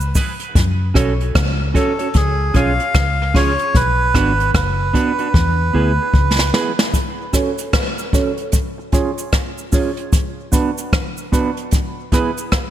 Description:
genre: dub reggae.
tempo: 75 BPM.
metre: 4/4.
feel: swing 63% on 16ths.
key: F# minor.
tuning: A4 = 441 Hz.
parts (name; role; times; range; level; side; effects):
vintage muted fingered electric bass; bass; 0.0-6.5 s; F#1 to F#2; -18 LUFS; equal; none.
cabasa; percussion; 0.0-0.4, 6.9-12.5 s; none; -29 LUFS; right 7 dB; high-pass filter on perc.
clean electric guitar; accompaniment; 0.2-12.3 s; B3 to C#5; -22 LUFS; right 4 dB; spring reverb, high-pass filter, low-pass filter, dub echo.
jazz brush drum kit; drums; 0.2-12.7 s; hi-hat, kick drum, rim click, snare drum; -17 LUFS; left 1 dB; none.
melodica; melody; 1.8-6.5 s; G#4 to E#5; -20 LUFS; right 1 dB; dub echo.
room: light reverb, studio reverb.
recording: none.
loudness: -15 LUFS.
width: side -11 dB against mid.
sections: 0.0-6.9 A section; 6.9-12.7 B section.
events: part muted 0.6-6.9; drum fill 5.3-6.9; filter sweep on clean electric guitar 6.9-12.7.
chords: 0.0 E; 0.6 F#m; 2.1 C#; 3.7 Bm; 5.3 E; 6.9 F#m; 8.5 C#; 10.1 Bm; 11.7 E.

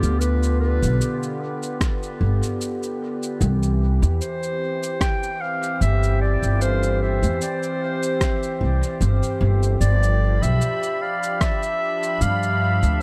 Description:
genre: ambient dub.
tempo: 75 BPM.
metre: 4/4.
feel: swing 54% on 16ths.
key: G mixolydian.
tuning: A4 = 440 Hz.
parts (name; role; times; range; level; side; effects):
warm clarinet; melody; 0.0-13.0 s; G4 to G5; -28 LUFS; equal; dub echo.
warm analog pad; sustained chords; 0.0-13.0 s; D3 to G4; -30 LUFS; equal; chorus, vintage 12-bit sampler grit.
upright bass; bass; 0.0-13.0 s; G1 to G2; -22 LUFS; equal; none.
electronic cabasa and rim click; drums; 0.0-13.0 s; none; -33 LUFS; equal; overdrive, dub echo.
electronic kick drum; drums; 1.8-11.6 s; none; -25 LUFS; equal; none.
backwards swelling texture; texture; 10.4-13.0 s; B5; -40 LUFS; equal; built-in reverb.
room: light reverb, digital ambience.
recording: none.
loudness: -22 LUFS.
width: mono.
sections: 0.0-13.0 A section.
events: none.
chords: 0.0 G7; 3.4 C; 9.8 G7.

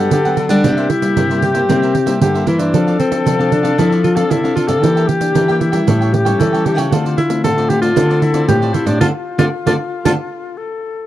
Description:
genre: samba and choro.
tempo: 115 BPM.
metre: 4/4.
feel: straight.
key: D minor.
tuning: A4 = 444 Hz.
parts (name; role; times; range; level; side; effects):
breathy alto saxophone; melody; 0.0-10.1 s; C4 to A4; -18 LUFS; equal; none.
concert flute; second line; 0.0-11.1 s; F4 to A4; -22 LUFS; left 5 dB; none.
cavaquinho; accompaniment; 0.0-10.1 s; D4 to G5; -25 LUFS; right 4 dB; none.
nylon-string guitar; accompaniment; 0.0-10.1 s; G2 to A4; -20 LUFS; left 2 dB; none.
nylon-string guitar; bass; 0.0-10.2 s; A2 to C4; -18 LUFS; equal; none.
pandeiro; percussion; 0.1-10.2 s; none; -19 LUFS; right 5 dB; none.
room: small room ambience.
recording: dry, close 1970s-style studio recording.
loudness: -12 LUFS.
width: side -13 dB against mid.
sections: 0.0-11.1 A section.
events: band accent 9.0-11.1.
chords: 0.0 Gmaj7; 0.6 C7; 2.7 F6; 4.8 Em7b5; 5.9 A7; 6.9 Dm7.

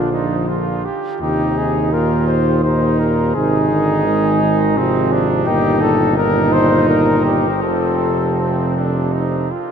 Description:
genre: classical, brass quintet.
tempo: 84 BPM.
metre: 3/4.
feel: uneven beats.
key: unclear.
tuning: A4 = 440 Hz.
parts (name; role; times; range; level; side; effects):
mellow cornet; melody; 0.0-9.1 s; F4 to C5; -20 LUFS; left 5 dB; none.
warm trumpet; second line; 0.0-9.7 s; C4 to G4; -21 LUFS; right 6 dB; none.
warm French horn; accompaniment; 0.0-9.5 s; Eb3 to Ab3; -23 LUFS; left 3 dB; none.
warm trombone; accompaniment; 0.0-9.5 s; Bb2 to Eb3; -21 LUFS; right 3 dB; none.
clear tuba; bass; 0.0-9.5 s; F1 to Eb2; -20 LUFS; right 1 dB; none.
room: wet huge ambient reverb, RT60 7.5 s.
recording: in a vast, echoing space, nothing above 11.0 kHz.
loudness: -14 LUFS.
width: side -7 dB against mid.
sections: 0.0-9.7 A section.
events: none.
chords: 0.0 Bb; 1.2 Eb5; 3.4 Ab; 5.5 Eb/G; 7.6 F.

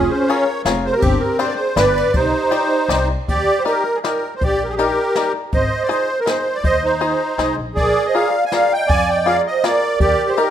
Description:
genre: musette waltz.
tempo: 161 BPM.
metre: 3/4.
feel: swing 54% on 8ths.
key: C minor, Eb major from 3.3 s.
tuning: A4 = 442 Hz.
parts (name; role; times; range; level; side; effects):
musette accordion; melody; 0.0-10.5 s; C4 to Ab5; -17 LUFS; right 1 dB; none.
mellow hollow bass bansuri; second line; 0.0-3.1, 7.8-10.5 s; D4 to F5; -22 LUFS; right 2 dB; none.
upright bass; bass; 0.0-10.1 s; F1 to F2; -24 LUFS; left 1 dB; none.
bluegrass banjo; accompaniment; 0.3-10.5 s; D4 to Eb5; -22 LUFS; left 5 dB; none.
jazz brush drum kit; drums; 0.3-10.5 s; hi-hat, kick drum, ride cymbal, snare drum; -24 LUFS; equal; none.
room: moderate recital hall reverb, RT60 1.5 s.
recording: minimal, uncompressed stereo recording.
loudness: -15 LUFS.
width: side -10 dB against mid.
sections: 0.0-3.3 A section; 3.3-10.5 B section.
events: none.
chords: 0.0 Db6; 1.0 Gsus4; 1.8 G; 2.1 Cmadd9; 3.3 Ebmaj7; 5.5 Ab; 7.8 Bb7; 10.0 Ebmaj7.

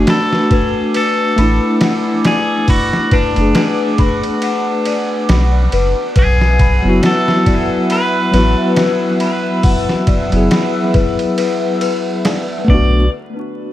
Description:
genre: trip hop.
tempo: 69 BPM.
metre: 4/4.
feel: swing 57% on 16ths.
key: B dorian.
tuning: A4 = 442 Hz.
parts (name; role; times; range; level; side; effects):
electric guitar at the edge of break-up; melody; 0.0-13.1 s; D4 to D5; -20 LUFS; equal; tape echo.
bell-like tine electric piano; accompaniment; 0.0-13.0 s; F#3 to G#4; -17 LUFS; left 1 dB; tremolo, tape echo.
dark analog pad; sustained chords; 0.0-13.1 s; D3 to E6; -23 LUFS; right 1 dB; chorus, phaser.
celesta; arpeggios; 0.0-13.1 s; B4 to B5; -23 LUFS; left 7 dB; tape echo.
soft dub sub bass; bass; 0.0-13.1 s; F#1 to B1; -13 LUFS; equal; tube saturation.
trip hop sampler-style drum kit; drums; 0.1-12.9 s; hi-hat, kick drum, ride cymbal, snare drum; -18 LUFS; equal; small room reverb.
room: digital ambience.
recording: echo-heavy mix, vinyl crackle.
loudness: -12 LUFS.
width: side -13 dB against mid.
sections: 0.0-13.1 A section.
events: none.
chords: 0.0 Bm7; 13.1 N.C..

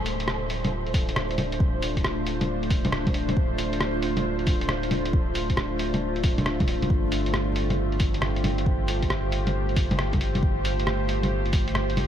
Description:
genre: future garage.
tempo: 136 BPM.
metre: 4/4.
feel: swing 66% on 16ths.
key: D minor.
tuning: A4 = 440 Hz.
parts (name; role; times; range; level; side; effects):
deep dark ambient pad; sustained chords; 0.0-12.1 s; A3 to C5; -28 LUFS; equal; chorus, built-in reverb, sidechain pumping.
warm sub bass; bass; 0.0-12.1 s; D1 to G1; -29 LUFS; equal; sidechain pumping.
lo-fi sampler-style drum kit; drums; 0.1-12.1 s; bongos, hi-hat, rim click; -29 LUFS; equal; none.
electronic kick drum; drums; 0.9-11.6 s; none; -24 LUFS; equal; none.
room: moderate huge ambient reverb, RT60 9.1 s.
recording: dreamy mix soaked in reverb, vinyl crackle, lossy compression artefacts.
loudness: -23 LUFS.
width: side -10 dB against mid.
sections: 0.0-12.1 A section.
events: none.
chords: 0.0 Dm7; 6.9 G9sus4.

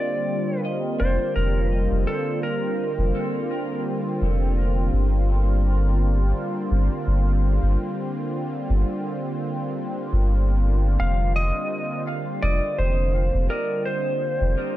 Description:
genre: ambient dub.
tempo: 84 BPM.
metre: 4/4.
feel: swing 55% on 16ths.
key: unclear.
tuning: A4 = 440 Hz.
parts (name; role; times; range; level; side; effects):
clean lap steel guitar; melody; 0.0-3.8, 11.0-14.8 s; A4 to F5; -27 LUFS; equal; dub echo.
warm analog pad; sustained chords; 0.0-14.8 s; D3 to F4; -27 LUFS; equal; chorus.
soft dub sub bass; bass; 1.0-14.6 s; F1 to G1; -20 LUFS; equal; none.
room: light reverb, digital ambience.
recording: none.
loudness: -21 LUFS.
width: side -14 dB against mid.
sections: 0.0-14.8 A section.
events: none.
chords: 0.0 Fsus4; 5.3 Gm7; 11.0 Fsus4.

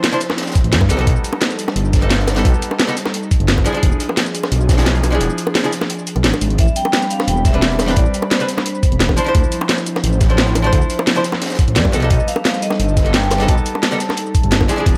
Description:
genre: liquid drum and bass.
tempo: 174 BPM.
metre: 4/4.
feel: straight.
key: unclear.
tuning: A4 = 440 Hz.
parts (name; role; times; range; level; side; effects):
archtop guitar, miked and amplified; accompaniment; 0.0-15.0 s; F3 to C5; -24 LUFS; equal; digital delay.
airy breathy pad; sustained chords; 0.0-15.0 s; F3 to B5; -28 LUFS; equal; chorus, sidechain pumping.
crunchy breakbeat drum kit; drums; 0.0-14.9 s; hi-hat, snare drum; -29 LUFS; equal; high-pass filter on hats, high-pass filter on snare, high-pass filter on room.
drum and bass drum kit; drums; 0.0-15.0 s; cabasa, hi-hat, snare drum; -22 LUFS; equal; none.
bongos; percussion; 0.3-14.7 s; none; -26 LUFS; equal; none.
swelling detuned saw bass; bass; 0.6-14.9 s; E1 to G2; -20 LUFS; equal; none.
electronic kick drum; drums; 0.6-14.9 s; none; -18 LUFS; equal; none.
vibraphone with medium hard mallets; melody; 6.6-9.1, 11.8-14.7 s; C5 to A5; -26 LUFS; equal; digital delay.
room: studio reverb.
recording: none.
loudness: -16 LUFS.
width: mono.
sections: 0.0-15.0 A section.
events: kick drops out 5.2-6.6.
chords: 0.0 Dm9; 0.9 Baug7; 3.7 E7b9; 6.6 Am11 (rootless); 9.2 Dm9; 11.9 Baug7.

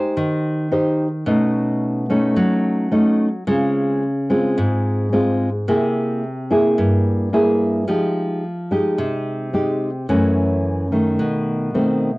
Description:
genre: bossa nova.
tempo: 109 BPM.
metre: 4/4.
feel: straight.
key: unclear.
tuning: A4 = 438 Hz.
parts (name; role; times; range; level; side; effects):
nylon-string guitar; solo; 0.0-12.2 s; Gb2 to C5; -17 LUFS; equal; cassette tape.
room: moderate studio reverb, RT60 0.6 s.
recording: home recording on cassette.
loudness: -17 LUFS.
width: side -22 dB against mid.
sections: 0.0-12.2 A section.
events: none.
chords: 0.0 Abmaj7 (rootless); 1.3 B9; 3.5 Dbmaj7; 5.7 C7b13; 7.9 Fm9; 10.1 Gbm7; 11.2 B7b9.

